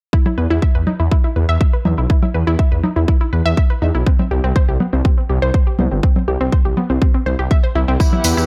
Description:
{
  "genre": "melodic techno",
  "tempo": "122 BPM",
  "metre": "4/4",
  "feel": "straight",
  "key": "E harmonic minor",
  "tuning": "A4 = 438 Hz",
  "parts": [
    { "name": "unison pluck", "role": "arpeggios", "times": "0.1-8.5 s", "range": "B3 to E5", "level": "-24 LUFS", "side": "equal", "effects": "sidechain pumping, tape echo" },
    { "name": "electronic kick drum", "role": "drums", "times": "0.1-8.1 s", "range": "none", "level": "-17 LUFS", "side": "equal", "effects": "none" },
    { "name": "electronic congas and hi-hat", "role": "drums", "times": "0.3-8.3 s", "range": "none", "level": "-23 LUFS", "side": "equal", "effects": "none" },
    { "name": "dark detuned saw bass", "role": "bass", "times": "0.4-8.5 s", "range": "G1 to E2", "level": "-19 LUFS", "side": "equal", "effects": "sidechain pumping" },
    { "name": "unison lead", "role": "melody", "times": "8.0-8.5 s", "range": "E4", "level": "-24 LUFS", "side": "equal", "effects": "sidechain pumping" },
    { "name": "muted studio string section", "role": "sustained chords", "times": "8.0-8.5 s", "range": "E3 to F#5", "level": "-26 LUFS", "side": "equal", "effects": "sidechain pumping" },
    { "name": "tambourine", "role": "percussion", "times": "8.0-8.5 s", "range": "none", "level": "-25 LUFS", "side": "equal", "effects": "none" }
  ],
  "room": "little or no reverb",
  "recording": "dark, warm production",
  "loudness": "-16 LUFS",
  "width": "mono",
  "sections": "0.1-8.5 A section",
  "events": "none",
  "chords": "0.1 E5; 4.1 N.C."
}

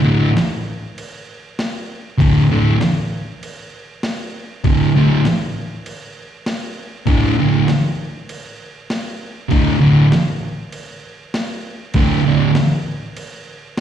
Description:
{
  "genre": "garage rock duo or trio",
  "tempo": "98 BPM",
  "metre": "4/4",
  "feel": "straight",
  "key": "unclear",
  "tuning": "A4 = 435 Hz",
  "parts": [
    { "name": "thick fuzz guitar", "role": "riff", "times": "0.0-12.5 s", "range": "D2 to D3", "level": "-14 LUFS", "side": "right 1 dB", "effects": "distortion, slapback echo" },
    { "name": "boom bap sampler-style drum kit", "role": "drums", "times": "0.4-13.8 s", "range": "crash cymbal, kick drum, snare drum", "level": "-23 LUFS", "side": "equal", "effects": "slapback echo" }
  ],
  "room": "light reverb",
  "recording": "live gig heard through the venue's PA, recital hall reverb",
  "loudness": "-14 LUFS",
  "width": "side -9 dB against mid",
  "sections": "0.0-13.8 A section",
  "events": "none",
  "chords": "0.0 D5"
}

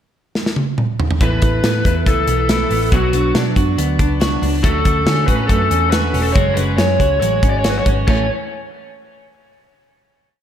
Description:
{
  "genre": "jangly indie pop",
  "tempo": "140 BPM",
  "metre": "4/4",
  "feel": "straight",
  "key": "A major",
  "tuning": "A4 = 441 Hz",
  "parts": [
    { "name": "modern studio drum kit", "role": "drums", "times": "0.4-8.2 s", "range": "crash cymbal, hi-hat, kick drum, snare drum, toms", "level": "-18 LUFS", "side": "equal", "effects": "none" },
    { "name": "lead guitar through a small cranked amp", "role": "melody", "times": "1.2-8.3 s", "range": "F#4 to D5", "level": "-20 LUFS", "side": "left 2 dB", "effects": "overdrive, diffuse ambient delay" },
    { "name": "picked steel-string acoustic guitar", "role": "accompaniment", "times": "1.2-8.3 s", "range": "A2 to A4", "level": "-23 LUFS", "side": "right 7 dB", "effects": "none" },
    { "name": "clean electric guitar", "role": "arpeggios", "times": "1.2-8.3 s", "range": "E3 to F#4", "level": "-24 LUFS", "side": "left 1 dB", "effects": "wide subtle chorus, diffuse ambient delay" },
    { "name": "vintage muted picked electric bass", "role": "bass", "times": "1.2-8.3 s", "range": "E1 to D3", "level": "-19 LUFS", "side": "equal", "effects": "none" }
  ],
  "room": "moderate lush hall reverb, RT60 1.6 s, small room ambience",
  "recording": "dreamy mix soaked in reverb",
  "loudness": "-14 LUFS",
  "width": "side -9 dB against mid",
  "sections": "0.0-1.2 pickup bar; 1.2-8.1 verse; 8.1-9.8 final chord",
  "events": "drum fill 0.3-1.2",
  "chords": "0.0 N.C.; 1.2 Asus2; 2.9 Bm; 4.6 Dmaj7; 6.4 F#sus2; 8.1 A"
}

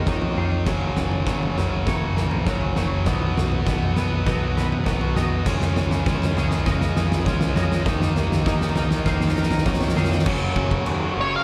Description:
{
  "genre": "post-rock",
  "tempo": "100 BPM",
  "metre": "4/4",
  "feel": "straight",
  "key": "F# major",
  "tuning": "A4 = 439 Hz",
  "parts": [
    { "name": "evolving wavetable pad", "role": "sustained chords", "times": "1.8-11.4 s", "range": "none", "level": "barely audible", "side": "none", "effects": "none" },
    { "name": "electric guitar at the edge of break-up", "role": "arpeggios", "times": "0.0-11.4 s", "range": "G#4 to D#5", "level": "-38 LUFS", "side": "equal", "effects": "slapback echo" },
    { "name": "twangy electric guitar", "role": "arpeggios", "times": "0.0-11.4 s", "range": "D#3 to E#5", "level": "-35 LUFS", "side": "equal", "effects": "ensemble chorus, slapback echo" },
    { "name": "tight distorted guitar", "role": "riff", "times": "0.0-11.4 s", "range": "F#2 to D#4", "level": "-30 LUFS", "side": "equal", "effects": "distortion" },
    { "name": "fuzz fingered electric bass", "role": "bass", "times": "0.0-11.4 s", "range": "F#1 to E#2", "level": "-30 LUFS", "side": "equal", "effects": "overdrive" },
    { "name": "oversized low-tuned drum kit", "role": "drums", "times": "0.1-11.0 s", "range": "crash cymbal, kick drum, snare drum, toms", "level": "-24 LUFS", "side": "equal", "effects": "none" },
    { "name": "octave-fuzz lead guitar", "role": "melody", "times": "11.2-11.4 s", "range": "C#5 to E#5", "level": "-24 LUFS", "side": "equal", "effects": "distortion, slapback echo" }
  ],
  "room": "light reverb",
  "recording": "dark, warm production",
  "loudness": "-22 LUFS",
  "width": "mono",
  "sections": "0.0-10.3 A section; 10.3-11.4 B section",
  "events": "build-up 0.0-10.3; drum fill 0.0-10.3",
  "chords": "0.0 D#madd9; 0.7 F#; 3.1 B; 5.5 C#add9; 7.9 D#madd9; 10.3 F#"
}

